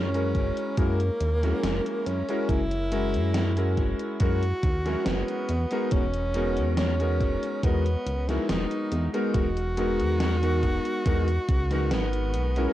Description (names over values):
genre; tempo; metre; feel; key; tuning
vaporwave; 70 BPM; 4/4; straight; E lydian; A4 = 441 Hz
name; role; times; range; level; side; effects
clear tenor saxophone; melody; 0.0-12.7 s; A#3 to F#4; -30 LUFS; equal; tape echo
bright electric grand piano; accompaniment; 0.0-12.7 s; G#3 to A#4; -29 LUFS; left 1 dB; lush chorus, vintage 12-bit sampler grit, dub echo
chorused synth bass; bass; 0.0-12.7 s; E1 to F#2; -27 LUFS; equal; none
gated 80s digital drum machine; drums; 0.1-12.7 s; hi-hat, snare drum; -33 LUFS; equal; gated reverb, gated reverb snare, studio reverb, dub echo
electronic kick drum; drums; 0.3-11.7 s; none; -26 LUFS; equal; studio reverb
room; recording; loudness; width
light reverb, digital ambience; echo-heavy mix, cassette tape; -23 LUFS; side -14 dB against mid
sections
0.0-12.7 A section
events
none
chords
0.0 F#7; 5.5 Emaj9#11